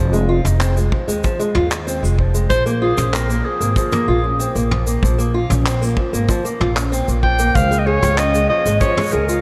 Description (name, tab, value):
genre	folktronica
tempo	95 BPM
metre	4/4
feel	straight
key	unclear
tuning	A4 = 440 Hz
part	fingerpicked old ladder-braced acoustic guitar	arpeggios	0.0-9.4 s	F3 to Ab4	-23 LUFS	equal	delay
part	upright bass	bass	0.0-9.4 s	F1 to Eb2	-21 LUFS	equal	tube saturation
part	vintage brush drum kit	drums	0.1-9.4 s	handclaps, shaker, toms	-28 LUFS	equal	none
part	kick drum	drums	0.9-8.9 s	none	-22 LUFS	equal	none
part	clear clarinet	melody	2.5-9.4 s	Ab4 to G5	-22 LUFS	equal	delay
room	moderate cathedral reverb, RT60 6.3 s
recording	dreamy mix soaked in reverb, vinyl crackle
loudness	-17 LUFS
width	mono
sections	0.0-9.4 A section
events	none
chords	0.0 Fm7; 2.5 Bb5; 7.6 Db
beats	0.60 1.24 1.87 | 2.50 3.13 3.76 4.39 | 5.03 5.66 6.29 6.92 | 7.55 8.18 8.82